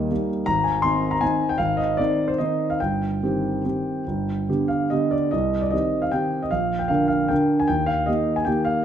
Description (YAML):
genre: classical, piano waltz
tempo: 137-167 BPM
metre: 3/4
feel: rubato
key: C minor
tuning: A4 = 440 Hz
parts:
  - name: warm concert grand piano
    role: solo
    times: 0.0-8.8 s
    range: G1 to C6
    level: -20 LUFS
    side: equal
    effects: none
room: moderate recital hall reverb, RT60 1.6 s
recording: dark, warm production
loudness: -20 LUFS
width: side -9 dB against mid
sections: 0.0-8.8 A section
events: none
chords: 0.5 Ab; 2.8 Cm/G; 4.1 G; 5.3 Cm; 6.5 Bb; 7.7 Eb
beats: 0.10 | 0.47 0.84 1.22 | 1.60 1.99 2.40 | 2.81 3.22 3.65 | 4.07 4.48 4.91 | 5.33 5.72 6.13 | 6.52 6.90 7.30 | 7.70 8.08 8.46